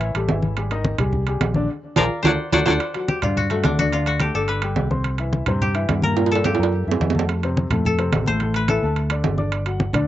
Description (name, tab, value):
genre	Afro-Cuban jazz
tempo	214 BPM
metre	4/4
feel	straight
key	G major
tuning	A4 = 439 Hz
part	koto	melody	0.0-10.1 s	A3 to F#5	-24 LUFS	left 3 dB	slapback echo
part	warm upright piano	accompaniment	0.0-10.1 s	A2 to D6	-26 LUFS	left 3 dB	slapback echo
part	fingered electric bass	bass	0.0-10.1 s	G1 to G2	-23 LUFS	equal	none
part	congas	percussion	0.0-10.1 s	none	-24 LUFS	left 1 dB	none
part	timbales	percussion	0.0-10.1 s	none	-25 LUFS	right 8 dB	none
part	clear baritone saxophone	second line	2.0-2.7 s	F3 to F#3	-26 LUFS	left 2 dB	slapback echo
room	little or no reverb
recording	recorded outdoors, with no room sound, nothing above 7.8 kHz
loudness	-18 LUFS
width	side -13 dB against mid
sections	0.0-2.8 A section; 2.8-10.1 B section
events	band accent 1.7-2.8; drum fill 2.4-2.8, 6.2-7.3; koto solo 2.8-10.1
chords	0.0 A5; 0.6 Abmaj9; 1.7 Bb7; 2.2 D7; 2.8 G5; 3.9 D5; 4.5 G; 5.0 C; 6.2 Gm7; 6.7 F#7; 7.3 F; 8.4 A5; 9.0 D5; 9.5 Gsus2